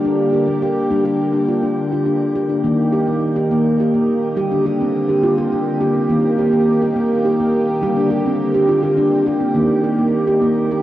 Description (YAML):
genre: world meditative, meditative tuned percussion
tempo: 70 BPM (dotted quarters)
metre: 6/8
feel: straight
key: G minor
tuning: A4 = 441 Hz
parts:
  - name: brassy analog pad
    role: sustained chords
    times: 0.0-10.8 s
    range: D3 to G4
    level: -20 LUFS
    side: right 1 dB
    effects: chorus, cassette tape, shimmer reverb
  - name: handpan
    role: arpeggios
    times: 0.0-10.8 s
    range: Eb3 to G4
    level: -16 LUFS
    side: equal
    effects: cassette tape, shimmer reverb
room: wet spring reverb, RT60 1.7 s, small room ambience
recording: home recording on cassette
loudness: -15 LUFS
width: side -13 dB against mid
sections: 0.0-2.6 A section; 2.6-10.8 B section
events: none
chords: 0.0 Gm; 2.6 Eb; 4.4 Gm; 6.1 Eb; 7.8 Gm; 9.5 Eb